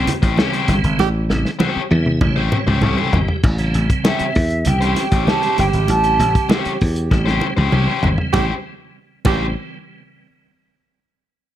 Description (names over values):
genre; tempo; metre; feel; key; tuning
funk; 98 BPM; 4/4; straight; A mixolydian; A4 = 435 Hz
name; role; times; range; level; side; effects
overdriven electric guitar; accompaniment; 0.0-9.4 s; C#4 to C#5; -22 LUFS; left 6 dB; none
tonewheel organ; stabs; 0.0-9.5 s; B#2 to E5; -25 LUFS; right 2 dB; chorus vibrato, slow rotary speaker, analog delay
dry thumbed slap bass; bass; 0.0-9.5 s; G1 to E2; -18 LUFS; equal; none
warm soul drum kit; drums; 0.1-9.4 s; crash cymbal, hi-hat, kick drum, snare drum, toms; -19 LUFS; equal; none
congas; percussion; 0.1-9.5 s; none; -26 LUFS; right 3 dB; none
breathy tenor saxophone; second line; 1.0-9.5 s; G4; -24 LUFS; right 11 dB; none
hollow concert flute; melody; 4.1-6.5 s; E5 to A5; -20 LUFS; right 2 dB; none
room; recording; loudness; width
light reverb; dark, warm production; -15 LUFS; side -12 dB against mid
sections
0.0-3.4 A section; 3.4-8.3 B section; 8.3-10.8 C section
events
drum fill 1.0-3.4, 7.1-8.3; tonewheel organ fill 1.6-3.4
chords
0.0 A7#9